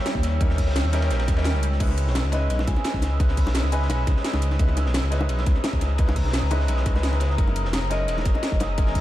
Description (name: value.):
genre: liquid drum and bass.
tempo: 172 BPM.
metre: 4/4.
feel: straight.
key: unclear.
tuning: A4 = 440 Hz.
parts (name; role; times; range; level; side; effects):
bright concert grand piano; accompaniment; 0.0-9.0 s; G3 to B4; -31 LUFS; left 1 dB; dub echo.
glassy FM pad; sustained chords; 0.0-9.0 s; C#5 to E6; -33 LUFS; left 1 dB; ensemble chorus, built-in reverb, sidechain pumping.
dark detuned saw bass; bass; 0.1-9.0 s; E1 to D#2; -23 LUFS; equal; none.
crunchy breakbeat drum kit; drums; 0.1-9.0 s; hi-hat, ride cymbal, snare drum; -35 LUFS; equal; high-pass filter on cymbals, studio reverb, high-pass filter on hats, high-pass filter on snare, high-pass filter on room.
drum and bass drum kit; drums; 0.1-9.0 s; crash cymbal, hi-hat, snare drum; -31 LUFS; equal; overdrive, studio reverb.
electronic kick drum; drums; 0.1-9.0 s; none; -22 LUFS; equal; overdrive, studio reverb.
bongos; percussion; 1.9-8.9 s; none; -34 LUFS; left 2 dB; none.
vibraphone with medium mallets; melody; 2.3-4.0, 7.9-8.6 s; D#5 to G#5; -35 LUFS; left 1 dB; dub echo.
room: small room ambience.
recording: dark, warm production.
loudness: -20 LUFS.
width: side -14 dB against mid.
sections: 0.0-9.0 A section.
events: none.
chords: 0.0 D#7b9; 1.6 C#m9; 7.4 F#13.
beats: 0.06 | 0.41 0.76 1.11 1.46 | 1.80 2.15 2.50 2.85 | 3.20 3.55 3.90 4.25 | 4.59 4.94 5.29 5.64 | 5.99 6.34 6.69 7.04 | 7.38 7.73 8.08 8.43 | 8.78.